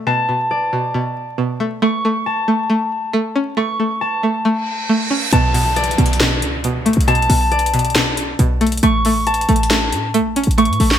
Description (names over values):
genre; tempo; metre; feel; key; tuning
hip hop, trap; 137 BPM; 4/4; half-time; B minor; A4 = 443 Hz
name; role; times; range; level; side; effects
string-like resonator pluck; accompaniment; 0.0-11.0 s; B2 to C#4; -19 LUFS; right 1 dB; chorus
concert harp; arpeggios; 0.0-11.0 s; D5 to C#6; -20 LUFS; left 1 dB; digital delay
reverse cymbal and downlifter; sound effects; 4.6-8.8 s; none; -26 LUFS; right 1 dB; none
short 808-style bass; bass; 5.3-11.0 s; A1 to A2; -18 LUFS; equal; none
trap drum kit; drums; 5.3-11.0 s; hi-hat, snare drum; -20 LUFS; left 1 dB; gated reverb
room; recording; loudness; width
light reverb; bright 1980s-style digital production, vinyl crackle; -15 LUFS; side -10 dB against mid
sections
0.0-5.3 A section; 5.3-11.0 B section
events
reverse cymbal 4.6-5.3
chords
0.0 Bm7; 1.8 A; 5.3 Bm7; 8.8 A